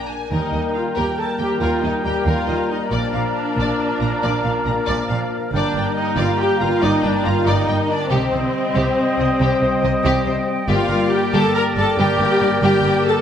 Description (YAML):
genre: cinematic, heroic adventure film score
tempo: 93 BPM (dotted quarters)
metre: 12/8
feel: straight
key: Eb major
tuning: A4 = 441 Hz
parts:
  - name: warm symphonic violin section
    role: melody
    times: 0.0-12.9 s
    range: G4 to Bb5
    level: -28 LUFS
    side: left 3 dB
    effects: none
  - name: dark symphonic violin section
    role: second line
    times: 0.0-13.2 s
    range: C5 to Bb5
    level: -28 LUFS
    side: left 2 dB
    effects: none
  - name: warm symphonic viola section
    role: accompaniment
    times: 0.0-13.2 s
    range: C4 to Bb4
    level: -22 LUFS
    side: equal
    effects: none
  - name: concert harp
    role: arpeggios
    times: 0.0-13.2 s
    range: G2 to Eb5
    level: -29 LUFS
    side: left 7 dB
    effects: none
  - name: rich studio double bass section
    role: bass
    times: 0.0-12.9 s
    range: G1 to Eb2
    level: -25 LUFS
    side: right 2 dB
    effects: none
  - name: rich symphonic cello section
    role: bass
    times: 0.0-12.9 s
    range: Eb2 to C3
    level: -25 LUFS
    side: right 2 dB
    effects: none
  - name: flute section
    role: second line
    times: 0.3-13.0 s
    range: G5 to Bb5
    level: -30 LUFS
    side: left 1 dB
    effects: none
  - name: warm clarinet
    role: second line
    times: 0.3-13.2 s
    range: Bb4 to C5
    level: -30 LUFS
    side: left 1 dB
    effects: none
  - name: warm oboe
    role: second line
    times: 0.3-13.2 s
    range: D5 to G5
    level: -29 LUFS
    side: right 1 dB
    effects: none
  - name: mellow French horn section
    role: sustained chords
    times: 0.3-13.2 s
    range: F3 to C4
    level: -26 LUFS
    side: left 3 dB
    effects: none
  - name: dark trumpet section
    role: stabs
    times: 0.3-13.2 s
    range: Bb4 to Eb5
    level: -28 LUFS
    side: right 2 dB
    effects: none
room: wet scoring stage reverb, RT60 1.7 s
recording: none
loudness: -16 LUFS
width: side -9 dB against mid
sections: 0.3-13.2 A section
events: none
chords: 0.3 Eb; 2.9 Bb; 5.5 Gm; 8.1 Cm; 10.7 Gm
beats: | 0.32 0.97 1.62 2.27 | 2.92 3.58 4.23 4.88 | 5.53 6.18 6.83 7.47 | 8.12 8.77 9.41 10.05 | 10.70 11.34 11.98 12.63